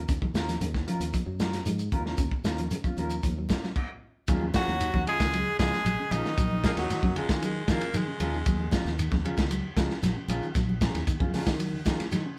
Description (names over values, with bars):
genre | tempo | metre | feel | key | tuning
afrobeat | 115 BPM | 4/4 | straight | Eb minor | A4 = 440 Hz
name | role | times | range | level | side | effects
fingered electric bass | bass | 0.0-12.2 s | Bb1 to Eb3 | -35 LUFS | equal | none
electric guitar at the edge of break-up | arpeggios | 0.1-12.4 s | Db3 to Gb3 | -37 LUFS | equal | spring reverb
crunchy breakbeat drum kit | drums | 0.1-12.2 s | crash cymbal, hi-hat, kick drum, ride cymbal, snare drum | -32 LUFS | equal | none
shekere | percussion | 0.1-12.2 s | none | -40 LUFS | equal | none
congas | percussion | 0.2-12.3 s | none | -36 LUFS | equal | none
mellow electric guitar | stabs | 0.3-12.0 s | Gb3 to Bb4 | -38 LUFS | equal | spring reverb
edgy tenor saxophone | melody | 4.6-7.2 s | Eb4 to Ab4 | -32 LUFS | equal | none
bright trombone | second line | 4.6-7.2 s | Eb3 to Ab3 | -40 LUFS | equal | none
raspy baritone saxophone | second line | 6.7-9.0 s | Gb3 to Bb3 | -36 LUFS | equal | none
room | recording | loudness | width
moderate studio reverb, RT60 0.8 s | band playing live in one room | -28 LUFS | mono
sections
0.0-4.3 A section; 4.3-12.4 B section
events
stop 3.8-4.3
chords
0.0 Ebm9; 4.3 Ebm11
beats
| 0.09 0.61 1.14 1.66 | 2.19 2.71 3.23 3.76 | 4.28 4.80 5.33 5.85 | 6.37 6.89 7.42 7.94 | 8.46 8.98 9.51 10.03 | 10.55 11.08 11.60 12.12